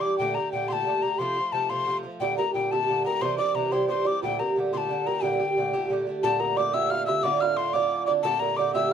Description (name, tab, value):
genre	celtic folk, Celtic jig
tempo	119 BPM (dotted quarters)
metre	6/8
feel	straight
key	G dorian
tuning	A4 = 438 Hz
part	breathy mellow mid whistle	melody	0.0-8.9 s	G5 to F6	-26 LUFS	left 5 dB	none
part	Irish bouzouki	accompaniment	0.0-8.9 s	A2 to G4	-27 LUFS	right 3 dB	none
part	kalimba	second line	2.2-8.9 s	G4 to F5	-29 LUFS	right 6 dB	none
room	moderate studio reverb, RT60 0.6 s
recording	dark, warm production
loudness	-23 LUFS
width	side -8 dB against mid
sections	0.0-6.2 A section; 6.2-8.9 B section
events	none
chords	0.2 Gmadd9; 1.2 F; 2.2 Gmadd9; 3.2 Cadd9; 4.2 Gmadd9; 7.2 Dm; 8.2 Gmadd9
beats	| 0.20 0.70 | 1.21 1.71 | 2.22 2.72 | 3.22 3.73 | 4.23 4.73 | 5.24 5.74 | 6.24 6.74 | 7.25 7.75 | 8.25 8.75